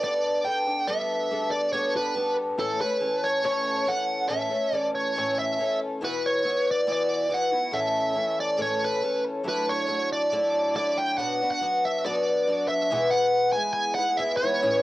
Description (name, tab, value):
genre	rock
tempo	140 BPM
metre	4/4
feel	straight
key	A mixolydian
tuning	A4 = 438 Hz
part	smooth overdriven lead guitar	melody	0.0-14.8 s	A4 to G#5	-25 LUFS	right 1 dB	none
part	picked twelve-string acoustic guitar	accompaniment	0.0-14.8 s	E2 to A4	-28 LUFS	left 2 dB	none
room	moderate studio reverb, RT60 0.6 s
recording	home recording on cassette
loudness	-23 LUFS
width	side -16 dB against mid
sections	0.0-12.9 A section; 12.9-14.8 B section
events	none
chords	0.0 Gadd9; 2.6 A; 6.0 Esus2/B; 7.7 A; 9.5 Dadd9/A; 11.2 Bm; 12.9 E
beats	0.01 0.44 | 0.87 1.30 1.73 2.16 | 2.59 3.02 3.45 3.88 | 4.31 4.74 5.17 5.59 | 6.03 6.45 6.88 7.31 | 7.74 8.17 8.60 9.04 | 9.46 9.90 10.33 10.76 | 11.19 11.62 12.05 12.48 | 12.91 13.34 13.77 14.20 | 14.63